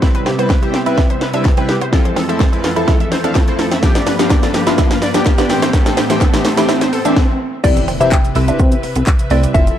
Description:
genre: dance-pop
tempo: 126 BPM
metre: 4/4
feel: straight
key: C major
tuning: A4 = 440 Hz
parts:
  - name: chorused retro synth keys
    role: accompaniment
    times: 0.0-9.7 s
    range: E3 to E5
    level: -19 LUFS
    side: left 1 dB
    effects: tremolo, sidechain pumping
  - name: string machine, violas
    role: sustained chords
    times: 0.0-9.8 s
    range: F2 to E5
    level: -24 LUFS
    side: equal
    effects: ensemble chorus, sidechain pumping
  - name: wide unison pluck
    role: arpeggios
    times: 0.0-7.1 s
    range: A3 to G5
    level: -23 LUFS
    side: left 1 dB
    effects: sidechain pumping, tape echo
  - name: house drum kit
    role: drums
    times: 0.0-9.8 s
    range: crash cymbal, handclaps, hi-hat, kick drum, shaker, snare drum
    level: -14 LUFS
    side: equal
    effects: none
  - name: riser and impact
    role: sound effects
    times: 0.0-9.5 s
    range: none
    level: -24 LUFS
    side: equal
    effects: none
  - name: direct-recorded clean electric guitar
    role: riff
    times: 0.2-9.7 s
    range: G3 to E4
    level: -22 LUFS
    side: right 5 dB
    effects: analog chorus
  - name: group handclap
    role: percussion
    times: 0.5-9.2 s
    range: none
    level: -29 LUFS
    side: left 5 dB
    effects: none
  - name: mallet-like synth pluck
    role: melody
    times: 7.6-9.7 s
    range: D5 to G5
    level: -19 LUFS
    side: left 3 dB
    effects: chorus, phaser, tape echo
  - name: chorused synth bass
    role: bass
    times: 7.6-9.7 s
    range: F1 to C3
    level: -16 LUFS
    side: equal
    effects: tube saturation, sidechain pumping
room: little or no reverb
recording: dry, gritty hardware recording, transformer saturation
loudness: -12 LUFS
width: side -10 dB against mid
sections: 0.0-7.6 A section; 7.6-9.8 B section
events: build-up 0.0-7.6; drum fill 0.0-7.2; riser 0.0-7.6; drop 7.6-9.8; impact 7.6-9.5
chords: 0.0 Cmaj7; 1.9 Fmaj7; 3.8 G7; 5.5 Am7; 7.6 Cmaj7

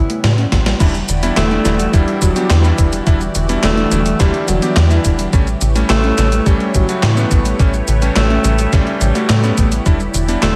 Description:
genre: synthwave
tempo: 106 BPM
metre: 4/4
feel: straight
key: E dorian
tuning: A4 = 440 Hz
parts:
  - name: breathy alto saxophone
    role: melody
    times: 0.0-10.6 s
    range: E3 to E4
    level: -22 LUFS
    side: equal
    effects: tape echo
  - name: phased analog pad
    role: sustained chords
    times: 0.0-10.6 s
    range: E3 to D5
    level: -26 LUFS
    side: equal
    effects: phaser, chorus, sidechain pumping
  - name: thumb-piano-like synth pluck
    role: arpeggios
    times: 0.0-10.5 s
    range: C#3 to D4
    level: -26 LUFS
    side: equal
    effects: chorus, cassette tape, digital delay
  - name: tight sequencer bass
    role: bass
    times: 0.0-10.6 s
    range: E1 to A2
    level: -18 LUFS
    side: equal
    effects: sidechain pumping
  - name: gated 80s digital drum machine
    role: drums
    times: 0.1-10.5 s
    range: crash cymbal, handclaps, hi-hat, shaker, snare drum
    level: -23 LUFS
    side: equal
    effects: gated reverb, gated reverb snare, small room reverb
  - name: electronic kick drum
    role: drums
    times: 0.5-10.0 s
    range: none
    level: -16 LUFS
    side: equal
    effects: small room reverb
  - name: bright electric grand piano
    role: stabs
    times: 0.8-10.6 s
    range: G3 to G4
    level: -24 LUFS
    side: equal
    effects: none
room: light reverb, digital ambience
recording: none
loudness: -14 LUFS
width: mono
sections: 0.8-10.6 A section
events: drum fill 0.5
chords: 0.0 A7; 0.8 Em7; 5.3 A7; 9.9 Em7

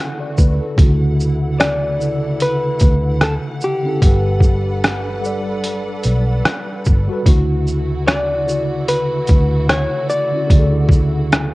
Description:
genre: lo-fi hip hop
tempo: 74 BPM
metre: 4/4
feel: swing 57% on 16ths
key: D major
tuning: A4 = 436 Hz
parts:
  - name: mellow tine electric piano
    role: accompaniment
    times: 0.0-11.5 s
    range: C#3 to F#5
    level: -22 LUFS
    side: equal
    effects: medium stereo tremolo, cassette tape
  - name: warm studio string section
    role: sustained chords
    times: 0.0-11.5 s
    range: E3 to F#5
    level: -30 LUFS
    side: right 1 dB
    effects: cassette tape
  - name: vintage muted fingered electric bass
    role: bass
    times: 0.4-11.5 s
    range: G1 to D2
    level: -18 LUFS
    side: equal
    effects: none
  - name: trip hop sampler-style drum kit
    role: drums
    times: 0.4-11.5 s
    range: hi-hat, kick drum, rim click, shaker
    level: -14 LUFS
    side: equal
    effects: cassette tape
  - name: hollow-body jazz guitar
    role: melody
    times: 1.6-11.5 s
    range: G4 to D5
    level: -20 LUFS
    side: left 1 dB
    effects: cassette tape
room: digital ambience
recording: home recording on cassette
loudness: -14 LUFS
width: side -20 dB against mid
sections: 0.8-11.5 A section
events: none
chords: 0.0 Dmaj9; 4.0 Gmaj9; 7.3 Dmaj9

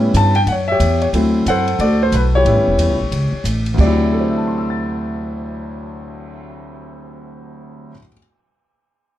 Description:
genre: jazz piano trio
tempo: 182 BPM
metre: 4/4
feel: swing 64% on 8ths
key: D mixolydian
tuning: A4 = 443 Hz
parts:
  - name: warm grand piano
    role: melody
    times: 0.0-8.2 s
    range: D2 to A6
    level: -19 LUFS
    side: left 1 dB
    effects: none
  - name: upright bass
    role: bass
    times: 0.0-7.9 s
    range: E1 to A2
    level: -17 LUFS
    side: equal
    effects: none
  - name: compact cocktail drum kit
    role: drums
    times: 0.1-6.4 s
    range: crash cymbal, cymbal swell, hi-hat, kick drum, ride cymbal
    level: -29 LUFS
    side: right 2 dB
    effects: none
room: light reverb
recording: none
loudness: -14 LUFS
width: side -13 dB against mid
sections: 0.0-3.8 A section; 3.8-6.4 B section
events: none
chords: 0.0 A7; 1.1 D7; 2.5 A7; 3.8 D9

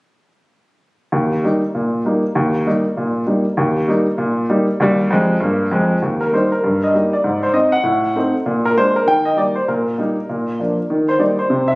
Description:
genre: jazz, stride piano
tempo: 197 BPM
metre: 4/4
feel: swing 61% on 8ths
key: Eb major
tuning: A4 = 440 Hz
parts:
  - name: warm upright piano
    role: solo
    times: 1.1-11.8 s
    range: Eb2 to G5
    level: -15 LUFS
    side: equal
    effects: none
room: little or no reverb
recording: recorded on a phone in the room, studio reverb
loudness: -15 LUFS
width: side -24 dB against mid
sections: 1.1-6.0 A section; 6.0-11.8 B section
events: none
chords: 1.1 Eb; 4.8 Ab5/Eb; 6.0 Eb; 6.6 Eb/G; 7.2 Ab; 7.9 Adim7; 8.5 Bb7; 9.1 Eb; 9.7 Eb/Bb; 10.3 Bb; 10.9 Eb

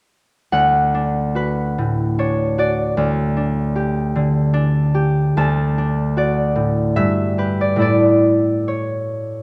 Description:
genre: classical, solo harp piece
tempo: 74 BPM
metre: 3/4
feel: uneven beats, rubato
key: D major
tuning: A4 = 440 Hz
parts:
  - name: concert harp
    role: solo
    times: 0.5-9.4 s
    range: D2 to A5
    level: -18 LUFS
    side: equal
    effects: none
room: moderate recital hall reverb, RT60 1.6 s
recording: none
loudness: -18 LUFS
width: mono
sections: 0.5-9.4 A section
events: none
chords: 0.5 D; 3.0 G5/D; 5.4 D; 7.0 G; 7.8 A

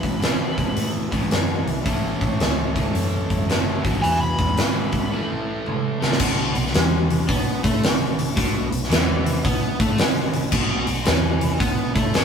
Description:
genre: blues rock power trio and southern rock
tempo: 111 BPM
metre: 4/4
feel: swing 65% on 8ths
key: unclear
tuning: A4 = 440 Hz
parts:
  - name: overdriven slide guitar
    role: melody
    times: 0.0-5.3 s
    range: G#5 to B5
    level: -26 LUFS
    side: equal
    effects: none
  - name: crunchy overdriven guitar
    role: riff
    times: 0.0-12.2 s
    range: E2 to B3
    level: -26 LUFS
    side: equal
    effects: none
  - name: vintage muted fingered electric bass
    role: bass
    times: 0.0-12.2 s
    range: F#1 to B2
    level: -27 LUFS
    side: left 1 dB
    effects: none
  - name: huge arena drum kit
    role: drums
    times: 0.0-12.2 s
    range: crash cymbal, hi-hat, kick drum, snare drum, toms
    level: -20 LUFS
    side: equal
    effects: none
room: light reverb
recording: rough rehearsal-room recording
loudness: -19 LUFS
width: side -7 dB against mid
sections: 0.0-6.2 A section; 6.2-12.2 B section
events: break 5.1-6.2; drum fill 5.7-6.2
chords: 0.0 E5; 1.9 A; 3.8 E/G#; 5.1 A5; 6.2 Asus2

